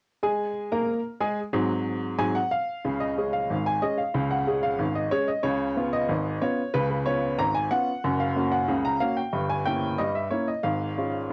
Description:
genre	ragtime piano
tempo	92 BPM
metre	2/4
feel	straight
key	Db major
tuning	A4 = 440 Hz
part	clear upright piano	solo	0.2-11.3 s	Gb1 to Bb5	-26 LUFS	equal	none
room	moderate small room reverb, RT60 0.6 s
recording	home recording on cassette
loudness	-26 LUFS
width	mono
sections	0.2-2.8 A section; 2.8-11.3 B section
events	none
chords	0.2 Absus2; 1.5 Ab7; 2.8 Db5; 5.5 Db7; 8.0 Gb; 9.3 Gdim7; 10.6 Db/Ab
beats	| 0.23 0.88 | 1.53 2.19 | 2.85 3.50 | 4.15 4.80 | 5.45 6.10 | 6.75 7.40 | 8.05 8.69 | 9.34 9.99 | 10.65 11.30

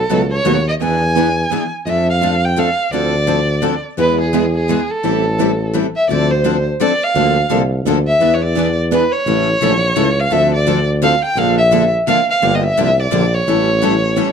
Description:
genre	acoustic string swing (jazz manouche)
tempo	170 BPM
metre	3/4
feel	swing 61% on 8ths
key	A minor, D minor from 6.1 s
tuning	A4 = 440 Hz
part	warm violin	melody	0.0-14.3 s	G#4 to G#5	-16 LUFS	right 1 dB	plate reverb
part	warm tuba	bass	0.0-14.3 s	G1 to F2	-18 LUFS	equal	none
part	picked steel-string acoustic guitar	accompaniment	0.1-14.3 s	B2 to A4	-20 LUFS	left 8 dB	none
part	picked steel-string acoustic guitar	accompaniment	0.1-14.3 s	B2 to B4	-22 LUFS	right 7 dB	none
room	moderate club reverb, RT60 0.5 s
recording	dark, warm production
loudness	-13 LUFS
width	side -7 dB against mid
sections	0.0-6.1 A section; 6.1-14.3 B section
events	none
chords	0.0 B7; 0.8 E7; 1.9 F6; 2.9 Dm7; 4.0 E; 5.0 Am7; 6.1 Dm7; 7.1 Bbmaj7; 8.2 E7; 9.3 A; 10.3 Dm7; 11.4 Bbmaj7; 12.4 Gm7; 13.5 A7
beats	0.10 0.46 | 0.81 1.16 1.51 | 1.86 2.22 2.57 | 2.92 3.27 3.62 | 3.98 4.33 4.68 | 5.04 5.39 5.74 | 6.09 6.44 6.80 | 7.15 7.50 7.85 | 8.20 8.56 8.91 | 9.26 9.61 9.96 | 10.31 10.67 11.02 | 11.37 11.72 12.07 | 12.42 12.77 13.12 | 13.47 13.83 14.18

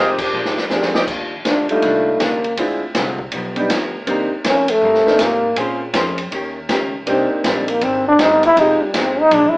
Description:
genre	jazz, big band swing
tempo	160 BPM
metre	4/4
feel	swing 64% on 8ths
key	Eb major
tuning	A4 = 441 Hz
part	warm saxophone section	melody	0.0-0.7 s	F3 to G4	-20 LUFS	equal	none
part	archtop guitar, miked and amplified	accompaniment	0.0-9.6 s	F2 to C5	-24 LUFS	left 1 dB	none
part	clear trumpet section	stabs	0.0-1.0 s	G4 to G5	-19 LUFS	equal	none
part	upright bass	bass	0.0-9.6 s	F1 to Bb2	-30 LUFS	equal	none
part	swinging big-band drum kit	drums	0.2-9.4 s	crash cymbal, hi-hat, kick drum, ride cymbal, snare drum	-22 LUFS	equal	none
part	clear baby grand piano	accompaniment	0.7-8.8 s	Bb2 to Bb4	-20 LUFS	equal	none
part	mellow trombone	melody	1.5-9.6 s	Eb3 to Fb4	-14 LUFS	equal	none
room	wet studio reverb, RT60 0.5 s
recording	band playing live in one room, AM radio sound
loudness	-14 LUFS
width	side -24 dB against mid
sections	0.0-1.1 A section; 1.1-9.6 B section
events	band accent 0.1; drum fill 0.3-1.1; trombone solo 1.1-9.6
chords	0.3 Bb7; 1.1 Ebmaj9; 2.6 Dm7b5; 3.3 G7b13; 4.1 Cm7; 5.6 Bbm9; 6.3 Eb7; 7.1 Abmaj9#11; 8.6 Fm9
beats	0.32 0.70 | 1.07 1.45 1.82 2.20 | 2.57 2.94 3.32 3.69 | 4.07 4.44 4.82 5.19 | 5.57 5.94 6.32 6.69 | 7.06 7.44 7.81 8.19 | 8.56 8.94 9.31

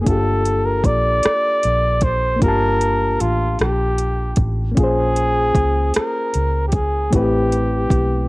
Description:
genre	slow six-eight R&B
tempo	51 BPM (dotted quarters)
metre	6/8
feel	straight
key	G dorian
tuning	A4 = 440 Hz
part	warm flugelhorn	melody	0.0-8.3 s	F4 to D5	-20 LUFS	equal	none
part	overdriven reed electric piano	accompaniment	0.0-8.3 s	A3 to A5	-22 LUFS	left 2 dB	none
part	vintage muted fingered electric bass	bass	0.0-8.3 s	G1 to Db2	-20 LUFS	equal	none
part	smooth R&B drum kit	drums	0.1-8.1 s	hi-hat, kick drum, rim click	-19 LUFS	equal	overdrive
room	light reverb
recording	worn, warbling old tape, cassette tape, warbly pitch drift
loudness	-15 LUFS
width	side -21 dB against mid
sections	0.0-8.3 A section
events	none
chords	0.1 Gm9; 4.8 Bbm9; 7.1 Am9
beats	| 0.07 1.24 | 2.42 3.60 | 4.77 5.95 | 7.13

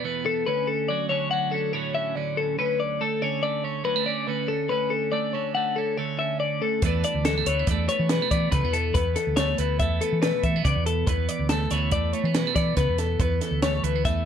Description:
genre	math rock and midwest emo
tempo	141 BPM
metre	5/4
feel	straight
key	unclear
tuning	A4 = 440 Hz
part	twelve-string electric guitar	accompaniment	0.0-14.3 s	D2 to D4	-29 LUFS	right 13 dB	spring reverb
part	twelve-string electric guitar	arpeggios	0.0-14.3 s	A4 to F#5	-26 LUFS	left 7 dB	none
part	hollow-body short-scale fingered electric bass	bass	6.8-14.2 s	D2 to E3	-26 LUFS	equal	none
part	compact cocktail drum kit	drums	6.8-14.2 s	hi-hat, kick drum, snare drum	-27 LUFS	right 1 dB	none
room	light reverb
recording	none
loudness	-22 LUFS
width	side -8 dB against mid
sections	0.0-14.3 A section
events	none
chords	0.5 Bm11/D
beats	0.04 | 0.46 0.88 1.31 1.73 2.16 | 2.58 3.01 3.43 3.86 4.28 | 4.70 5.13 5.55 5.98 6.40 | 6.83 7.25 7.68 8.10 8.53 | 8.95 9.38 9.80 10.23 10.65 | 11.08 11.50 11.93 12.35 12.78 | 13.20 13.63 14.05

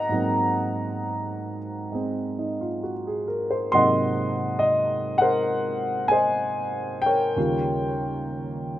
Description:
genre	solo jazz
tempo	66 BPM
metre	4/4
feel	swing 66% on 8ths, rubato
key	unclear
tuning	A4 = 440 Hz
part	dark baby grand piano	solo	0.0-8.8 s	Eb2 to C6	-22 LUFS	equal	none
room	moderate studio reverb, RT60 0.7 s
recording	rough home demo mix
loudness	-22 LUFS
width	side -13 dB against mid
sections	0.0-8.8 A section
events	none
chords	0.0 Ab9; 7.4 Eb9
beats	| 0.11 1.02 1.93 2.84 | 3.73 4.63 5.54 6.45 | 7.37 8.29

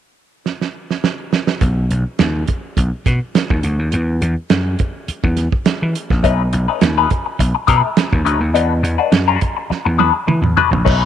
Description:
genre	funk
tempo	104 BPM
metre	4/4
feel	straight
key	B mixolydian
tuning	A4 = 439 Hz
part	warm soul drum kit	drums	0.5-11.0 s	crash cymbal, hi-hat, kick drum, snare drum, toms	-17 LUFS	right 3 dB	none
part	vintage slap bass	bass	1.6-11.1 s	A#1 to E3	-16 LUFS	equal	none
part	semi-hollow electric guitar	accompaniment	6.2-11.0 s	G#3 to B4	-17 LUFS	left 10 dB	wah, phaser
room	moderate spring reverb, RT60 2.6 s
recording	1960s-style stereo, lossy compression artefacts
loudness	-14 LUFS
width	side -10 dB against mid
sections	0.0-1.6 A section; 1.6-10.9 B section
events	drum fill 0.5-1.6, 9.7-10.9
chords	0.0 N.C.; 1.6 B; 3.9 Esus2; 6.2 B9; 8.6 E9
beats	0.46 1.03 | 1.61 2.19 2.77 3.35 | 3.93 4.51 5.08 5.66 | 6.24 6.82 7.39 7.97 | 8.55 9.13 9.70 10.28 | 10.86

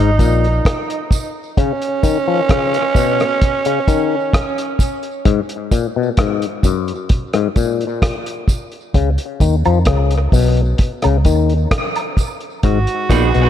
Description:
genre	dub reggae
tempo	65 BPM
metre	4/4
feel	straight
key	G# dorian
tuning	A4 = 440 Hz
part	growling tenor saxophone	second line	0.0-4.8, 12.6-13.5 s	C#4 to F#4	-19 LUFS	right 4 dB	tape echo
part	auto-wah clav	riff	0.0-13.5 s	F#2 to E#3	-19 LUFS	left 9 dB	tape echo
part	vintage muted fingered electric bass	bass	0.0-0.6, 8.9-13.5 s	G#1 to E#2	-15 LUFS	equal	none
part	cloth-damped thuddy drum kit	drums	0.2-13.5 s	hi-hat, kick drum, rim click	-17 LUFS	equal	none
part	tambourine and woodblock	percussion	0.2-13.3 s	none	-29 LUFS	right 8 dB	tape echo
part	semi-hollow electric guitar	accompaniment	13.1-13.3 s	B3 to B4	-17 LUFS	right 6 dB	spring reverb, tape echo
room	light reverb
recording	echo-heavy mix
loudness	-14 LUFS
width	side -10 dB against mid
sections	0.0-13.5 A section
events	break 0.0-12.6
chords	0.0 G#5; 1.6 N.C.; 12.6 G#m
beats	0.65 | 1.57 2.49 3.42 4.34 | 5.26 6.18 7.10 8.03 | 8.95 9.87 10.79 11.71 | 12.64

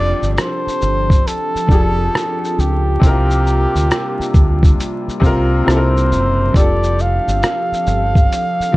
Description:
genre	lo-fi hip hop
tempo	68 BPM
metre	4/4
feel	swing 64% on 16ths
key	F major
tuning	A4 = 440 Hz
part	trumpet with cup mute	melody	0.0-8.8 s	G4 to F5	-20 LUFS	equal	none
part	bright upright piano	accompaniment	0.0-8.8 s	C3 to Bb4	-21 LUFS	left 1 dB	cassette tape, plate reverb
part	warbly tape-like pad	sustained chords	0.0-8.8 s	C3 to A4	-25 LUFS	equal	chorus, built-in reverb
part	deep dub fingered electric bass	bass	0.0-8.6 s	F1 to D2	-17 LUFS	equal	none
part	lo-fi sampler-style drum kit	drums	0.2-8.8 s	hi-hat, kick drum, rim click, shaker	-14 LUFS	equal	none
room	light reverb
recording	vinyl crackle, nothing above 10.5 kHz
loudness	-13 LUFS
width	side -19 dB against mid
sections	0.0-8.8 A section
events	none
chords	0.0 F69; 3.0 C7sus4; 5.7 C7; 6.5 F69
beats	0.37 1.25 2.13 | 3.02 3.90 4.78 5.66 | 6.54 7.43 8.31

